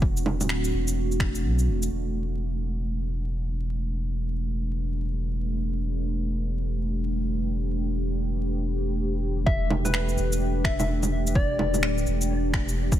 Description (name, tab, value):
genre	future garage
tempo	127 BPM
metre	4/4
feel	swing 63% on 16ths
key	E minor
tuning	A4 = 440 Hz
part	deep dark ambient pad	sustained chords	0.0-13.0 s	A3 to B4	-31 LUFS	equal	chorus, built-in reverb, sidechain pumping
part	soft dub sub bass	bass	0.0-13.0 s	D1 to B1	-27 LUFS	equal	sidechain pumping
part	electronic kick drum	drums	0.0-1.3, 9.5-13.0 s	none	-25 LUFS	equal	overdrive
part	electronic shaker, bongos and finger snaps	drums	0.2-1.9, 9.7-13.0 s	none	-29 LUFS	right 2 dB	overdrive, soft clipping on snare
part	soft struck synth lead	melody	9.5-12.0 s	B4 to E5	-31 LUFS	left 2 dB	chorus, dub echo
room	light reverb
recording	dense, heavily limited modern master, vinyl crackle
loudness	-24 LUFS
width	side -12 dB against mid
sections	0.0-1.9 A section; 1.9-9.5 B section; 9.5-13.0 C section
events	kick drops out 1.4-1.9; filter sweep on ambient pad 1.9-9.5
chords	0.0 Am; 1.9 Em7